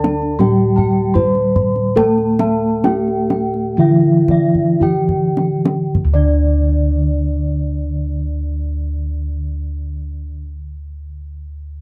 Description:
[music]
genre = Javanese gamelan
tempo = 51-84 BPM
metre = 4/4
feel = straight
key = D slendro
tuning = A4 = 441 Hz
[part]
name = gamelan-type bronze metallophone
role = melody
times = 0.0-10.4 s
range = D4 to C5-45c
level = -23 LUFS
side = equal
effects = none
[part]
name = gamelan-type bronze metallophone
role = accompaniment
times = 0.0-10.4 s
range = D3 to D4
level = -22 LUFS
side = equal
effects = none
[part]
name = gamelan-type bossed gongs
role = arpeggios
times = 0.0-10.4 s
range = D5 to C6-45c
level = -32 LUFS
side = equal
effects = none
[part]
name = gamelan-type bronze metallophone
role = arpeggios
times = 0.0-10.4 s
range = D5 to C6-45c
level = -29 LUFS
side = equal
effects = none
[part]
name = gamelan-type bossed gongs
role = bass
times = 0.0-10.3 s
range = D2 to D5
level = -21 LUFS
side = equal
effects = none
[part]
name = kendang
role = percussion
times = 0.0-6.5 s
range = none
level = -22 LUFS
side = equal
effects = none
[sound]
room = small room ambience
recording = dry, close 1970s-style studio recording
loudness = -16 LUFS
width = mono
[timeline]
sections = 0.0-5.9 A section; 5.9-10.7 B section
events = slowing down 0.0-5.9; drum fill 4.5-5.9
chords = none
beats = 0.39 1.15 | 1.96 2.84 3.78 4.81 | 5.94 7.13 8.31 9.50

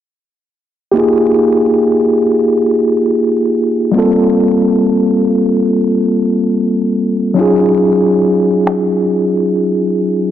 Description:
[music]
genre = contemporary R&B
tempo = 70 BPM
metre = 4/4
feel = straight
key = unclear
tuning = A4 = 440 Hz
[part]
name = tine electric piano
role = accompaniment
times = 0.9-10.3 s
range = Gb3 to A4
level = -10 LUFS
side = equal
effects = fast stereo tremolo
[part]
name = electronic finger snaps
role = drums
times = 8.7-8.9 s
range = none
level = -26 LUFS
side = equal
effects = overdrive, soft clipping on snare
[sound]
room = light reverb, digital ambience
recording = dense, heavily limited modern master, low-pass filter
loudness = -10 LUFS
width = side -10 dB against mid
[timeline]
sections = 0.9-10.3 A section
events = filter sweep 0.9-10.3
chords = 0.9 Fm11; 3.9 Gm11; 7.4 Ebm11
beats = | 0.95 1.80 2.66 3.52 | 4.38 5.23 6.09 6.95 | 7.80 8.66 9.52

